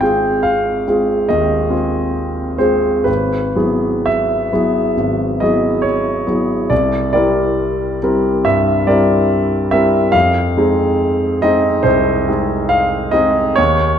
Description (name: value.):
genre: classical, impressionist solo piano.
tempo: 69 BPM.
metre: 4/4.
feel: uneven beats, rubato.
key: unclear.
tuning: A4 = 440 Hz.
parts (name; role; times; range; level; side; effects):
clear grand piano; solo; 0.0-14.0 s; Ab1 to G5; -13 LUFS; equal; none.
room: wet recital hall reverb, RT60 1.7 s.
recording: dark, warm production.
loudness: -13 LUFS.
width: side -8 dB against mid.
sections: 0.0-14.0 A section.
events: none.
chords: 0.0 Ab6; 3.1 Eadd9/G#; 6.7 C9; 10.1 Fm7.